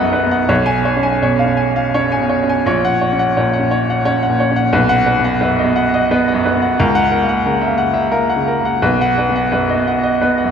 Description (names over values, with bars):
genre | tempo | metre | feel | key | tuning
classical, romantic character piece for solo piano | 81-91 BPM | 3/4 | rubato | B major | A4 = 440 Hz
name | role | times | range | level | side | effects
bright baby grand piano | solo | 0.0-10.5 s | A#1 to G#5 | -13 LUFS | equal | none
room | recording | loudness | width
wet church reverb, RT60 2.6 s | recorded in a church or concert hall | -13 LUFS | side -7 dB against mid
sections
0.0-10.5 A section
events
none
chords
0.5 C#7/B; 2.7 F#/A#; 4.7 B; 6.8 F#7/C#; 8.8 B